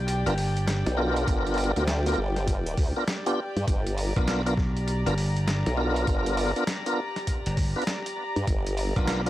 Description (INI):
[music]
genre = glitch hop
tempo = 100 BPM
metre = 4/4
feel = swing 63% on 16ths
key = unclear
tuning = A4 = 440 Hz
[part]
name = glassy slap bass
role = bass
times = 0.0-9.3 s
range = G1 to B1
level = -26 LUFS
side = equal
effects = none
[part]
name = dark studio string section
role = texture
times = 0.0-9.3 s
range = G4 to A#5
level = -34 LUFS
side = left 1 dB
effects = sidechain pumping
[part]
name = boom bap sampler-style drum kit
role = drums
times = 0.1-9.3 s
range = hi-hat, snare drum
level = -33 LUFS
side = equal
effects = studio reverb
[part]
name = tonewheel organ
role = stabs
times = 0.3-9.3 s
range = B3 to B4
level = -29 LUFS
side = equal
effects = chorus vibrato, fast rotary speaker, sidechain pumping, analog delay
[part]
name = formant-sweep wobble bass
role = bass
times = 0.9-8.9 s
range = G1 to G2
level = -27 LUFS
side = equal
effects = chorus
[part]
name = electronic kick drum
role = drums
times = 1.3-9.1 s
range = none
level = -26 LUFS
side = equal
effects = studio reverb
[sound]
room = little or no reverb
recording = dry, gritty hardware recording, vinyl crackle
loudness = -24 LUFS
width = side -14 dB against mid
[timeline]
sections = 0.0-9.3 A section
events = none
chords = 0.0 G7#9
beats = 0.07 0.67 | 1.27 1.87 2.47 3.07 | 3.67 4.27 4.87 5.47 | 6.07 6.67 7.27 7.87 | 8.47 9.07